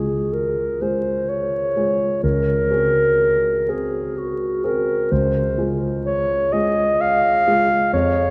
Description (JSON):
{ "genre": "classical, romantic duo for clarinet and grand piano", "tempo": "64 BPM", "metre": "3/4", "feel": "rubato", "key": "Db major", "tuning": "A4 = 440 Hz", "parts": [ { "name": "dark clarinet", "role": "melody", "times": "0.0-8.3 s", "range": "Gb4 to F5", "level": "-21 LUFS", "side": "equal", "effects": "none" }, { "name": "dark concert grand piano", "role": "accompaniment", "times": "0.0-8.3 s", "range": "Db2 to Ab4", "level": "-25 LUFS", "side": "equal", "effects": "none" } ], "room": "wet cathedral reverb, RT60 5.3 s", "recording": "in a vast, echoing space, vinyl crackle", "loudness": "-20 LUFS", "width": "mono", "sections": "0.0-8.3 A section", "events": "none", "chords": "0.0 Db; 2.2 Ab7/Db; 5.1 Db" }